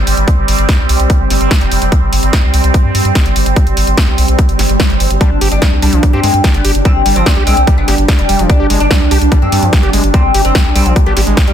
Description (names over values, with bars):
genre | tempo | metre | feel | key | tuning
psychedelic trance | 146 BPM | 4/4 | straight | G major | A4 = 440 Hz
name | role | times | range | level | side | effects
bubbling stepped-filter texture | sustained chords | 0.0-11.5 s | G3 to D4 | -17 LUFS | right 2 dB | chorus, built-in reverb, sidechain pumping
round analog bass | bass | 0.0-11.5 s | F1 to G2 | -13 LUFS | equal | none
big-room dance drum kit | drums | 0.1-11.5 s | hi-hat, snare drum | -18 LUFS | equal | studio ambience
electronic kick drum | drums | 0.3-11.5 s | none | -10 LUFS | equal | overdrive, studio ambience
swell | sound effects | 4.5-5.2 s | none | -20 LUFS | equal | none
oud | melody | 5.2-11.5 s | G3 to D4 | -16 LUFS | left 1 dB | phaser, sidechain pumping, dub echo
overdriven acid bass | riff | 5.2-11.4 s | F3 to G4 | -20 LUFS | moving between left 3 dB and right 4 dB | distortion, auto-pan, sidechain pumping, dub echo
room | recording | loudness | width
digital ambience | dense, heavily limited modern master | -9 LUFS | side -9 dB against mid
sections
0.0-11.5 A section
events
swell 4.5-5.2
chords
0.0 G5